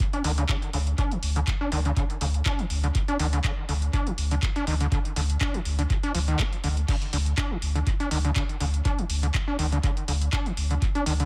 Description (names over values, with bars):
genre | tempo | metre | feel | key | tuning
acid house | 122 BPM | 4/4 | swing 54% on 16ths | unclear | A4 = 436 Hz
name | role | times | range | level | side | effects
electronic kick drum | drums | 0.0-10.9 s | none | -30 LUFS | equal | overdrive
punchy analog drum machine | drums | 0.0-11.3 s | crash cymbal, handclaps, hi-hat | -35 LUFS | equal | tape echo
overdriven acid bass | riff | 0.1-11.3 s | D3 to D4 | -32 LUFS | equal | distortion, tube saturation, subtle chorus, analog delay
warm sub bass | bass | 0.2-11.3 s | D2 | -27 LUFS | equal | sidechain pumping
room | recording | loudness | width
little or no reverb | echo-heavy mix | -26 LUFS | mono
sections
0.0-11.3 A section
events
none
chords
0.0 D5